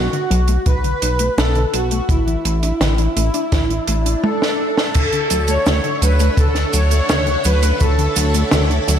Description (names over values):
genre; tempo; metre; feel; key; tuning
synthwave; 84 BPM; 4/4; straight; D major; A4 = 440 Hz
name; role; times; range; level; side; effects
soft supersaw; melody; 0.0-8.8 s; E4 to C#5; -20 LUFS; equal; cassette tape, ping-pong delay, shimmer reverb, slapback echo
warbly dusty pluck; arpeggios; 0.0-9.0 s; B2 to D4; -26 LUFS; left 2 dB; chorus, ping-pong delay
chorused synth bass; bass; 0.0-9.0 s; A1 to D2; -17 LUFS; equal; sidechain pumping
compact cocktail drum kit; drums; 0.1-9.0 s; cabasa, crash cymbal, hi-hat, snare drum, toms; -22 LUFS; right 2 dB; none
kick drum; drums; 0.7-8.0 s; none; -17 LUFS; equal; none
swell; sound effects; 3.8-5.0 s; none; -28 LUFS; left 1 dB; none
string machine, full ensemble; sustained chords; 4.9-9.0 s; D4 to F#5; -24 LUFS; equal; ensemble chorus, sidechain pumping, shimmer reverb
room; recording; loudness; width
light reverb, small room ambience; none; -14 LUFS; side -9 dB against mid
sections
0.0-5.0 A section; 5.0-9.0 B section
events
swell 3.8-5.0; drum fill 4.2-5.0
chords
0.0 B7(no3); 2.1 Asus4; 5.0 Dmaj7